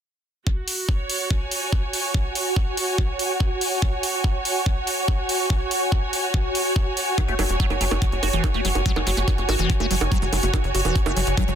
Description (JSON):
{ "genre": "psychedelic trance", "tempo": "143 BPM", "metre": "4/4", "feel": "straight", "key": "unclear", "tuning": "A4 = 443 Hz", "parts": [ { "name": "swarming drone", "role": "sustained chords", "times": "1.6-11.6 s", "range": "F#4", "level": "-28 LUFS", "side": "right 1 dB", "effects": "built-in reverb, sidechain pumping" }, { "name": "electronic kick drum", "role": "drums", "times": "0.5-11.5 s", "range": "none", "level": "-22 LUFS", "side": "equal", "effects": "none" }, { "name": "warm symphonic string section", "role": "texture", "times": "0.5-11.6 s", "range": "F#4 to G#5", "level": "-27 LUFS", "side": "right 1 dB", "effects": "sidechain pumping" }, { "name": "electronic hi-hat and bongos", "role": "drums", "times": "0.7-11.6 s", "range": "none", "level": "-27 LUFS", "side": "right 3 dB", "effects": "overdrive" }, { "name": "liquid acid bass", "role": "riff", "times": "7.2-11.5 s", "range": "E3 to F#4", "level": "-27 LUFS", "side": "equal", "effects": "phaser, auto-pan, sidechain pumping, digital delay" }, { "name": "tight sequencer bass", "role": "bass", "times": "7.3-11.6 s", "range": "E1 to G#1", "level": "-24 LUFS", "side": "equal", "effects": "none" } ], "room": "light reverb", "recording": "dense, heavily limited modern master", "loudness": "-20 LUFS", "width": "side -9 dB against mid", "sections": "0.5-11.6 A section", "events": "filter sweep on synth drone 0.5-11.6", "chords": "0.5 F#5" }